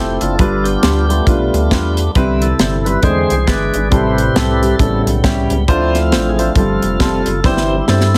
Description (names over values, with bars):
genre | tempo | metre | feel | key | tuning
uptempo gospel | 136 BPM | 4/4 | swing 60% on 8ths | C major | A4 = 440 Hz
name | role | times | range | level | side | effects
clear concert grand piano | accompaniment | 0.0-8.2 s | G2 to C5 | -20 LUFS | equal | none
tonewheel organ | sustained chords | 0.0-8.2 s | C3 to D5 | -20 LUFS | equal | slow rotary speaker
rubbery square bass | bass | 0.0-8.2 s | F1 to G2 | -20 LUFS | equal | none
tight funk drum kit | drums | 0.2-8.2 s | hi-hat, kick drum, snare drum | -19 LUFS | equal | none
room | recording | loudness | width
light reverb | heavily compressed radio sound, multiband compression | -14 LUFS | mono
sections
0.0-8.2 A section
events
tonewheel organ solo 0.0-8.2; drum fill 7.4-8.2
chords
0.4 G7; 2.2 Cmaj7; 3.0 E7b13; 3.9 Am7; 4.8 A7; 5.7 Dm7; 6.6 G9sus4; 7.4 C/G